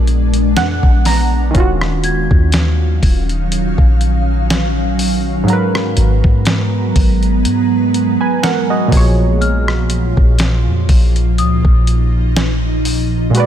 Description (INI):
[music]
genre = contemporary R&B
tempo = 61 BPM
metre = 4/4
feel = swing 54% on 16ths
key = unclear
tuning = A4 = 440 Hz
[part]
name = warm analog keys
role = accompaniment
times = 0.0-13.5 s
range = Ab2 to Bb5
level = -19 LUFS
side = right 2 dB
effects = chorus
[part]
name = ethereal airy pad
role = sustained chords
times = 0.0-13.5 s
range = Bb2 to Bb5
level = -18 LUFS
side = right 1 dB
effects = ensemble chorus, built-in reverb, sidechain pumping
[part]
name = clean 808-style bass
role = bass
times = 0.0-13.3 s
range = Eb1 to Ab2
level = -15 LUFS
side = equal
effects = none
[part]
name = dusty soul sampler-style drum kit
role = drums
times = 0.1-13.5 s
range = hi-hat, kick drum, rim click, snare drum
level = -16 LUFS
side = equal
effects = none
[part]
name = worn celesta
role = texture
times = 0.6-3.1, 9.4-12.5 s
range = Eb6 to Ab6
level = -27 LUFS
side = left 4 dB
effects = stereo widening, tape echo
[sound]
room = little or no reverb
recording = none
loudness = -11 LUFS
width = side -10 dB against mid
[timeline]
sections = 0.0-13.5 A section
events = synth keys fill 0.1-1.5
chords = 0.0 Bb7b9b13; 1.5 Ebm9; 5.5 Abm9; 8.9 Gbmaj13/Bb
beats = 0.56 | 1.55 2.53 3.51 4.50 | 5.48 6.46 7.45 8.43 | 9.41 10.40 11.38 12.37 | 13.35